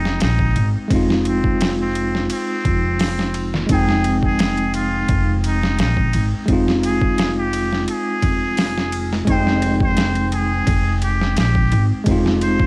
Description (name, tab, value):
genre	trip hop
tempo	86 BPM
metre	4/4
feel	straight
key	F minor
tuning	A4 = 441 Hz
part	trumpet with straight mute	melody	0.0-12.7 s	C4 to C5	-24 LUFS	equal	cassette tape, tape echo
part	bell-like tine electric piano	accompaniment	0.0-12.7 s	Ab3 to G5	-20 LUFS	equal	fast stereo tremolo, harmonic tremolo, cassette tape
part	upright bass	bass	0.0-12.7 s	F1 to Bb1	-20 LUFS	equal	none
part	boom bap sampler-style drum kit	drums	0.1-12.7 s	hi-hat, kick drum, ride cymbal, snare drum	-22 LUFS	equal	overdrive, cassette tape
room	little or no reverb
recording	home recording on cassette, vinyl crackle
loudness	-16 LUFS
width	side -27 dB against mid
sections	0.0-12.7 A section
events	none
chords	0.0 Fm7